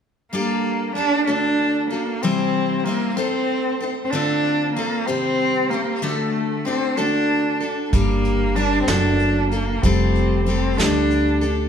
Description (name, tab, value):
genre	acoustic folk duo or small band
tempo	63 BPM (dotted quarters)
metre	6/8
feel	straight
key	unclear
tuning	A4 = 441 Hz
part	warm cello	melody	0.3-11.5 s	A3 to D4	-21 LUFS	right 1 dB	none
part	picked steel-string acoustic guitar	accompaniment	0.3-11.7 s	C3 to C5	-23 LUFS	left 3 dB	none
part	upright bass	bass	7.9-11.7 s	F1 to D2	-21 LUFS	right 1 dB	none
part	vintage brush drum kit	drums	7.9-11.6 s	hi-hat, kick drum, snare drum	-23 LUFS	right 1 dB	none
room	light reverb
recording	none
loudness	-18 LUFS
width	side -8 dB against mid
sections	0.3-11.7 A section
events	none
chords	0.3 Gmadd9; 1.3 D; 2.2 C; 3.2 Adim; 4.1 Dm7; 5.1 Cm; 6.0 D; 7.9 Gm; 8.9 D/F#; 9.8 Fadd9; 10.8 Dsus4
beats	| 0.33 1.28 | 2.23 3.18 | 4.13 5.08 | 6.03 6.98 | 7.93 8.88 | 9.84 10.79